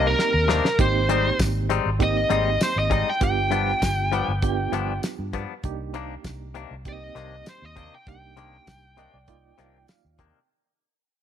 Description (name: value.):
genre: straight-eighth soul blues.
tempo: 99 BPM.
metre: 4/4.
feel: straight.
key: C minor.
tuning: A4 = 438 Hz.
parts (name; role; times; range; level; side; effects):
biting lead guitar; melody; 0.0-9.9 s; Bb4 to G5; -25 LUFS; equal; overdrive.
barky reed electric piano; accompaniment; 0.0-10.5 s; Bb3 to G5; -30 LUFS; right 15 dB; overdrive, fast tremolo.
direct-recorded clean electric guitar; stabs; 0.0-10.4 s; G2 to Eb4; -28 LUFS; left 10 dB; lush chorus.
vintage muted fingered electric bass; bass; 0.0-10.3 s; G1 to G2; -27 LUFS; equal; none.
damped 70s drum kit; drums; 0.2-10.3 s; hi-hat, kick drum, snare drum, tambourine; -26 LUFS; equal; none.
room: light reverb, studio ambience.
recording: 1960s-style stereo with parts hard left and right.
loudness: -20 LUFS.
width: side -9 dB against mid.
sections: 0.0-10.5 A section.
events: fade-out 0.0-10.5; drum fill 0.2-0.8; reed electric piano fill 8.7-10.5.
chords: 0.0 Cm9; 0.8 Abmaj7; 3.2 G7; 5.6 Cm9.